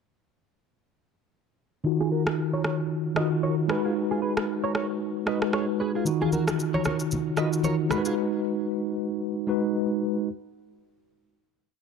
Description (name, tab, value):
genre	afrobeats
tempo	114 BPM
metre	4/4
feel	swing 58% on 16ths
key	G# dorian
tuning	A4 = 440 Hz
part	mellow tine electric piano	accompaniment	1.8-10.3 s	D#3 to B4	-25 LUFS	left 1 dB	medium stereo tremolo, low-pass filter
part	direct-recorded clean electric guitar	riff	2.0-8.1 s	E#4 to D#5	-32 LUFS	right 3 dB	analog chorus, low-pass filter, ping-pong delay
part	electronic rim click and shaker	drums	2.3-8.2 s	none	-32 LUFS	right 1 dB	none
part	congas	percussion	6.2-8.0 s	none	-31 LUFS	left 1 dB	none
room	light reverb, digital ambience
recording	dark, warm production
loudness	-24 LUFS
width	side -5 dB against mid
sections	1.9-10.3 breakdown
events	none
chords	1.9 D#madd9; 3.7 G#m7; 6.1 D#madd9; 7.9 G#m7